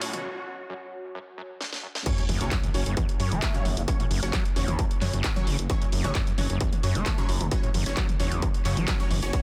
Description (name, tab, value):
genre	driving peak-time techno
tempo	132 BPM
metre	4/4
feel	straight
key	F# minor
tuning	A4 = 440 Hz
part	screaming distorted acid line	riff	0.0-9.2 s	E2 to A3	-35 LUFS	equal	distortion, analog chorus, cassette tape, sidechain pumping, dub echo
part	rave stab	stabs	0.0-9.4 s	F#3 to C#5	-38 LUFS	equal	chorus, built-in reverb, sidechain pumping, dub echo
part	techno drum kit	drums	0.0-9.4 s	crash cymbal, handclaps, hi-hat, snare drum, toms	-35 LUFS	equal	none
part	riser and sub drop	sound effects	0.0-3.9 s	none	-40 LUFS	equal	none
part	electronic kick drum	drums	2.1-9.4 s	none	-29 LUFS	equal	distortion
part	gritty driven synth bass	bass	2.3-9.3 s	E1 to F#2	-31 LUFS	equal	sidechain pumping
room	digital ambience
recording	dense, heavily limited modern master, high-pass filter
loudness	-26 LUFS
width	mono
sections	0.0-2.1 A section; 2.1-9.4 B section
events	build-up 0.0-2.1; riser 0.0; filter sweep 0.0-2.1; break 0.2-2.1; drum fill 1.6-2.1; drop 2.1-9.4; impact 2.1-3.9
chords	0.0 F#5